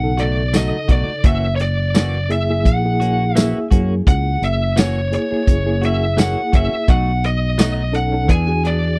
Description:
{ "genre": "straight-eighth soul blues", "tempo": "85 BPM", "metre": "4/4", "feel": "swing 55% on 16ths", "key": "unclear", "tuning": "A4 = 440 Hz", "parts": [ { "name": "lead guitar through a small cranked amp", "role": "melody", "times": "0.0-9.0 s", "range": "C#5 to G#5", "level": "-25 LUFS", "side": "equal", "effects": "overdrive" }, { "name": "reed electric piano", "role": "accompaniment", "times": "0.0-9.0 s", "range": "C#3 to A4", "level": "-26 LUFS", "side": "equal", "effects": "fast tremolo" }, { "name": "fingered electric bass", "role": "bass", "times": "0.0-9.0 s", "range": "F#1 to F#2", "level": "-21 LUFS", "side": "equal", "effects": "none" }, { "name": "direct-recorded clean electric guitar", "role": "stabs", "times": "0.2-8.9 s", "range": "E3 to G#4", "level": "-29 LUFS", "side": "equal", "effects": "subtle chorus" }, { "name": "warm soul drum kit", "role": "drums", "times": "0.2-8.8 s", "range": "hi-hat, kick drum, snare drum, tambourine", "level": "-17 LUFS", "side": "equal", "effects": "none" } ], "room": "studio reverb", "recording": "none", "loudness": "-17 LUFS", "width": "mono", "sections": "0.0-9.0 A section", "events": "none", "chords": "0.0 B7; 1.2 F#7; 6.9 B7; 8.3 E7" }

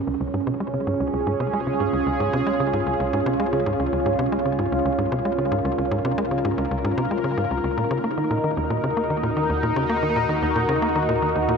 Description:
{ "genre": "ambient, sequencer-driven space music", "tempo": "113 BPM", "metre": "4/4", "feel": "straight", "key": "Db major", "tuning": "A4 = 440 Hz", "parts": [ { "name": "sweeping resonant pad", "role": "sustained chords", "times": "0.0-11.6 s", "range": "Db4 to Bb4", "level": "-22 LUFS", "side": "right 1 dB", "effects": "chorus" }, { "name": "tight sequencer bass", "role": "riff", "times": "0.0-11.6 s", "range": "Db2 to Bb3", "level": "-25 LUFS", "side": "equal", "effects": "tape echo" }, { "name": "warm sub bass", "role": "bass", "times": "0.0-11.6 s", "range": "Db2 to Eb2", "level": "-39 LUFS", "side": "equal", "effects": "none" } ], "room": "wet huge ambient reverb, RT60 8.4 s", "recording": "none", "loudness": "-20 LUFS", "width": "side -5 dB against mid", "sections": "0.0-11.6 A section", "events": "fade-in on sub bass 0.0-11.6", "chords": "0.0 Db; 7.8 Ebm" }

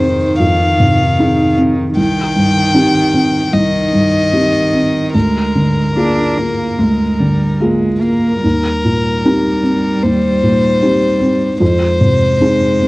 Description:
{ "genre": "neoclassical piano and strings", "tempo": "75 BPM", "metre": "4/4", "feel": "uneven beats, rubato", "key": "Eb major", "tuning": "A4 = 440 Hz", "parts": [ { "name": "warm violin", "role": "melody", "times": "0.0-12.9 s", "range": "Bb4 to G5", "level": "-17 LUFS", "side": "left 2 dB", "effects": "cassette tape" }, { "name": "warm cello", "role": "second line", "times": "0.0-12.9 s", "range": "Eb3 to D4", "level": "-19 LUFS", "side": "right 2 dB", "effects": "cassette tape" }, { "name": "felt-muted upright piano", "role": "accompaniment", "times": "0.0-12.9 s", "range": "C2 to Ab4", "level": "-13 LUFS", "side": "equal", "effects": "cassette tape" } ], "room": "light reverb", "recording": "home recording on cassette, nothing above 10.3 kHz", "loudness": "-11 LUFS", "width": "side -21 dB against mid", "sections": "0.0-12.9 A section", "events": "none", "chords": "0.0 Fm7; 2.0 Cm; 5.1 Bb7/D; 8.4 Eb6; 11.6 Fm7" }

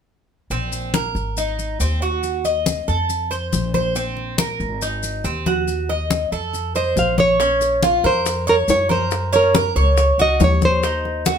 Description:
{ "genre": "latin, Cuban son and guajira", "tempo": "140 BPM", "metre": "4/4", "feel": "straight", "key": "Bb minor", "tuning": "A4 = 439 Hz", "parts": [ { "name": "Cuban tres", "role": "arpeggios", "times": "0.5-11.4 s", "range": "C4 to Eb5", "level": "-20 LUFS", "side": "right 2 dB", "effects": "none" }, { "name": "upright bass", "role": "bass", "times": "0.5-11.4 s", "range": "Ab1 to Gb2", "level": "-23 LUFS", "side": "equal", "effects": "none" }, { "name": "congas", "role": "percussion", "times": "0.5-11.4 s", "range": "none", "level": "-23 LUFS", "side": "left 5 dB", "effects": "none" }, { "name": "maracas", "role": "percussion", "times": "0.5-11.4 s", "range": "none", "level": "-31 LUFS", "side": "left 7 dB", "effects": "none" }, { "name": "nylon-string guitar", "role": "melody", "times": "6.8-11.2 s", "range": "Bb4 to F5", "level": "-19 LUFS", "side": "right 1 dB", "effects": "none" }, { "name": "bongos", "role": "percussion", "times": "7.4-11.4 s", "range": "none", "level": "-27 LUFS", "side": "left 4 dB", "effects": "none" } ], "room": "wet studio reverb, RT60 0.6 s", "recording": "band playing live in one room", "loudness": "-17 LUFS", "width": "side -7 dB against mid", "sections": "0.5-7.4 A section; 7.4-11.4 B section", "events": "none", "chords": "0.5 Bbsus2; 1.4 Ab7; 2.2 Ebmadd9; 3.1 F; 4.0 Bbsus2; 4.8 Ab7; 5.7 Ebmadd9; 6.5 F; 7.4 Bbm; 9.1 Gb; 10.8 Ebm" }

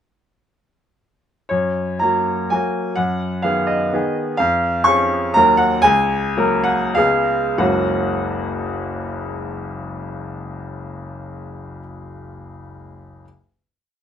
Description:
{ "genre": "classical, romantic triple-time dance for piano with dotted rhythms", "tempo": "89-136 BPM", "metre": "3/4", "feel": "rubato", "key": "F# major", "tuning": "A4 = 435 Hz", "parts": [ { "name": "clear grand piano", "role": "solo", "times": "1.5-13.3 s", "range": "F#1 to C#6", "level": "-17 LUFS", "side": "equal", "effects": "none" } ], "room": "light reverb", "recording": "none", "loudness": "-16 LUFS", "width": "side -9 dB against mid", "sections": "1.5-7.6 A section; 7.6-11.2 final chord", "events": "slowing down 3.7-7.6", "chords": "1.5 F#; 3.0 G#m7/F#; 4.4 C#/E#; 5.4 D#m; 5.8 F#/C#; 7.0 C#7; 7.6 F#" }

